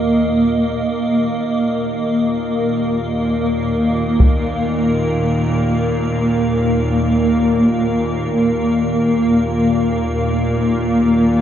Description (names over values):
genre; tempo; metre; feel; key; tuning
dark ambient drone; free time; none; none; unclear; A4 = 439 Hz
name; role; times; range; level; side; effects
granular cloud pad; sustained chords; 0.0-11.4 s; Bb3 to F5; -16 LUFS; equal; built-in reverb
bowed-like drone; drone; 0.0-11.4 s; Eb2 to Bb2; -20 LUFS; equal; built-in reverb
icy glass pad; texture; 0.0-11.4 s; Bb4 to Eb5; -28 LUFS; right 1 dB; chorus, built-in reverb
solo taiko drums; percussion; 4.2-4.4 s; none; -13 LUFS; equal; low-pass filter on perc
room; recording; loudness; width
wet huge ambient reverb, RT60 7.9 s; dark, warm production, nothing above 7.7 kHz; -15 LUFS; side -10 dB against mid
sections
0.0-11.4 A section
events
fade-in on synth drone 0.0-11.4; fade-out on ambient pad 0.0-11.4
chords
0.0 Eb5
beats
free time